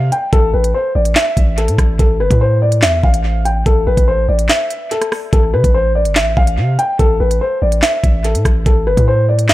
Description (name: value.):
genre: hip hop, drill.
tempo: 144 BPM.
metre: 4/4.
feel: half-time.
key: A minor.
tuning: A4 = 441 Hz.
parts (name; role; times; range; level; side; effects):
dark concert grand piano; melody; 0.0-9.5 s; A4 to G5; -16 LUFS; left 1 dB; low-pass filter, tape echo.
long sustained 808-style bass; bass; 0.0-9.5 s; G1 to C3; -15 LUFS; equal; none.
drill drum kit; drums; 0.1-9.5 s; handclaps, hi-hat, kick drum, rim click, snare drum; -15 LUFS; equal; none.
room: little or no reverb.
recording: echo-heavy mix.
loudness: -11 LUFS.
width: side -16 dB against mid.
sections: 0.0-9.5 A section.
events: break 4.5-5.3.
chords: 0.0 N.C.; 2.0 A5; 5.3 N.C.; 8.7 A5.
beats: | 0.33 0.74 1.16 1.58 | 1.99 2.41 2.83 3.24 | 3.66 4.08 4.49 4.91 | 5.33 5.74 6.16 6.58 | 6.99 7.41 7.83 8.24 | 8.66 9.08 9.49.